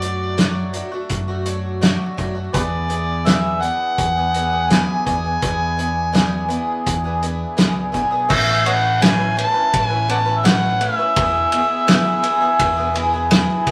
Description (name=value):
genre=folk rock and heartland rock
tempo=84 BPM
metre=4/4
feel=straight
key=A major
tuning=A4 = 443 Hz
part: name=overdriven harmonica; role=melody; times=0.0-13.0 s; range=G4 to A5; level=-22 LUFS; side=equal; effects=none
part: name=picked twelve-string acoustic guitar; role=accompaniment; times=0.0-13.7 s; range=E3 to B4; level=-25 LUFS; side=equal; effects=none
part: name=picked electric bass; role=bass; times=0.0-13.7 s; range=E1 to F#2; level=-28 LUFS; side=equal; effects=none
part: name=loose indie drum kit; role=drums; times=0.0-13.7 s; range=crash cymbal, hi-hat, kick drum, ride cymbal, snare drum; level=-21 LUFS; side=equal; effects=none
room=wet club reverb, RT60 0.7 s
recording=vinyl crackle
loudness=-18 LUFS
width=mono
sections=0.0-8.3 A section; 8.3-13.7 B section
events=none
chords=0.0 D/F#; 2.5 E7; 8.3 Aadd9; 11.2 E